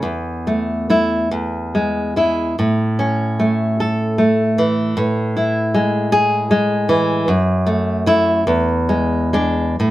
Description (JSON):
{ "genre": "romantic piece for solo classical guitar", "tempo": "44-53 BPM (dotted quarters)", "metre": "6/8", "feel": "rubato", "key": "unclear", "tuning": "A4 = 440 Hz", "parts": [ { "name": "nylon-string guitar", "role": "solo", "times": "0.0-9.9 s", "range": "E2 to A4", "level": "-15 LUFS", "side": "equal", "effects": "none" } ], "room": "moderate studio reverb, RT60 0.5 s", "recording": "band playing live in one room", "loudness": "-15 LUFS", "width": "side -15 dB against mid", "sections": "0.0-9.9 A section", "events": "none", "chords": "0.0 Esus4; 1.3 E; 2.6 A; 5.0 E/A; 7.3 F#m7; 8.5 E7", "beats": "| 0.01 1.31 | 2.58 3.79 | 4.97 6.12 | 7.27 8.46 | 9.78" }